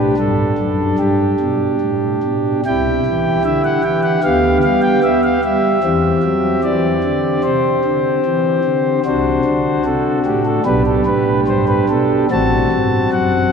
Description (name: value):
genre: classical, chorale-style piece for pipe organ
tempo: 75 BPM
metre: 4/4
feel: rubato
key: G major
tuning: A4 = 443 Hz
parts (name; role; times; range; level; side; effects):
- pipe organ, principal; solo; 0.0-13.5 s; A1 to A5; -13 LUFS; equal; none
room: wet cathedral reverb, RT60 4.3 s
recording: minimal, uncompressed stereo recording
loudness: -13 LUFS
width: side -6 dB against mid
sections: 0.0-13.5 A section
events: none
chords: 0.0 G; 2.6 C; 4.2 G/D; 5.8 C/E; 9.0 D7/C; 10.6 G/B; 12.3 F#dim/A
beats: 0.17 0.98 1.80 | 2.65 3.45 4.24 5.04 | 5.84 6.64 7.45 8.25 | 9.04 9.84 10.64 11.46 | 12.30 13.11